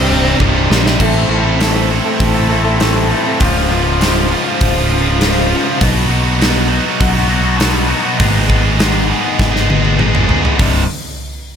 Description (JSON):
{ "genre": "quiet-loud alternative rock", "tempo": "100 BPM", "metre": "4/4", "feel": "straight", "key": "unclear", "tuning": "A4 = 440 Hz", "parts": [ { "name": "overdriven semi-hollow guitar", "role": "riff", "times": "0.0-10.8 s", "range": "C2 to A4", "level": "-18 LUFS", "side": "left 12 dB", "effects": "phaser" }, { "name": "scooped high-gain guitar", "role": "riff", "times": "0.0-10.8 s", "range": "C2 to A4", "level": "-18 LUFS", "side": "right 12 dB", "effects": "distortion" }, { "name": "thick fuzz guitar", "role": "riff", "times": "0.0-1.0 s", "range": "C2 to C3", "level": "-19 LUFS", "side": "right 1 dB", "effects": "distortion" }, { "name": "picked electric bass", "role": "bass", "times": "0.0-10.9 s", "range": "C1 to C2", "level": "-16 LUFS", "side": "equal", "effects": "none" }, { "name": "big rock drum kit", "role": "drums", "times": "0.4-10.7 s", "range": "crash cymbal, hi-hat, kick drum, snare drum, toms", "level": "-17 LUFS", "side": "equal", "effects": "none" }, { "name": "electric guitar through a small old amp", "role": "arpeggios", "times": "1.0-5.8 s", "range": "Db2 to A4", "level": "-19 LUFS", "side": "right 1 dB", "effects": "ensemble chorus" } ], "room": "small room ambience", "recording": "none", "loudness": "-11 LUFS", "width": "side -8 dB against mid", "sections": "0.0-1.0 A section; 1.0-10.6 B section", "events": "drum fill 0.4-1.0, 9.4-10.6", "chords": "0.0 Cm; 1.0 Am; 3.4 Db; 5.8 B; 8.2 Abm; 10.6 Cm", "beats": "0.40 | 1.00 1.60 2.21 2.81 | 3.41 4.01 4.61 5.20 | 5.80 6.40 7.00 7.60 | 8.19 8.79 9.39 9.98 | 10.58" }